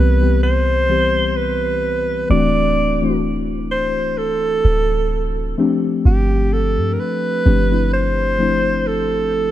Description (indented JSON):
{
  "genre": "contemporary R&B",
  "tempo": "64 BPM",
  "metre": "4/4",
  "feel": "swing 54% on 16ths",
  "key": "unclear",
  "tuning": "A4 = 440 Hz",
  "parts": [
    { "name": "mellow alto saxophone", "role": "melody", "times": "0.0-9.5 s", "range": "G4 to D5", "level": "-19 LUFS", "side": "right 2 dB", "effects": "digital delay" },
    { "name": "muted felt-like synth keys", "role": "accompaniment", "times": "0.0-9.5 s", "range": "E3 to Bb4", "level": "-20 LUFS", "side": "left 4 dB", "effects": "chorus" },
    { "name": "clean 808-style bass", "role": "bass", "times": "0.0-9.5 s", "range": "C1 to G2", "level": "-19 LUFS", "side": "right 1 dB", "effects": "none" }
  ],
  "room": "light reverb, studio reverb",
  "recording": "dark, warm production",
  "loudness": "-15 LUFS",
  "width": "side -12 dB against mid",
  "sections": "0.0-9.5 A section",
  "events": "none",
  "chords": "0.0 Cmaj7; 2.3 D9; 5.6 G9sus4"
}